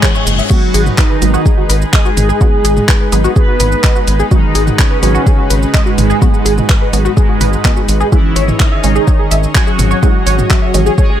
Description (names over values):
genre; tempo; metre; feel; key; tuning
melodic techno; 126 BPM; 4/4; straight; G# minor; A4 = 439 Hz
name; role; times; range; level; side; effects
resonant sweep polysynth; melody; 0.0-11.2 s; G#2 to B4; -17 LUFS; equal; wide subtle chorus, sidechain pumping, ping-pong delay
lush unison pad; sustained chords; 0.0-11.2 s; G#3 to D#5; -22 LUFS; equal; chorus, sidechain pumping
tight sequenced synth; arpeggios; 0.0-11.2 s; F#4 to G#5; -20 LUFS; equal; chorus, sidechain pumping, dub echo
filtered dub chord stab; stabs; 0.0-11.2 s; C#3 to C#4; -21 LUFS; right 4 dB; phaser, sidechain pumping, dub echo
deep house drum kit; drums; 0.0-11.1 s; crash cymbal, handclaps, hi-hat, shaker, toms; -17 LUFS; right 1 dB; overdrive
electronic kick drum; drums; 0.0-11.1 s; none; -11 LUFS; equal; overdrive
reverse cymbal; sound effects; 0.0-0.5 s; none; -20 LUFS; left 5 dB; none
gritty driven synth bass; bass; 0.3-10.9 s; F#1 to G#1; -14 LUFS; equal; sidechain pumping
room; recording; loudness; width
digital ambience; none; -9 LUFS; side -10 dB against mid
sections
0.0-11.2 A section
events
reverse cymbal 0.0-0.5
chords
0.0 C#m/G#; 0.5 G#m7; 8.1 C#m/G#